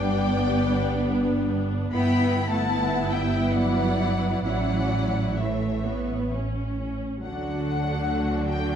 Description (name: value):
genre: classical, slow romantic movement for string orchestra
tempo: 63-80 BPM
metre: 3/4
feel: rubato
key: D major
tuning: A4 = 440 Hz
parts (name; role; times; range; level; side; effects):
- rich symphonic violin section; melody; 0.0-8.8 s; E5 to B5; -32 LUFS; left 4 dB; none
- warm symphonic violin section; second line; 0.0-8.8 s; F#4 to G5; -34 LUFS; left 3 dB; none
- rich symphonic viola section; accompaniment; 0.0-8.8 s; F#3 to E4; -27 LUFS; equal; none
- rich symphonic cello section; bass; 0.0-8.8 s; D3 to B3; -29 LUFS; right 1 dB; none
- rich symphonic double bass section; bass; 0.0-8.8 s; G1 to D2; -28 LUFS; right 2 dB; none
room: moderate scoring stage reverb, RT60 1.8 s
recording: dark, warm production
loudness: -22 LUFS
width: side -8 dB against mid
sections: 0.0-7.2 A section; 7.2-8.8 B section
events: none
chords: 0.0 G; 1.9 Em/G; 4.5 A; 7.2 D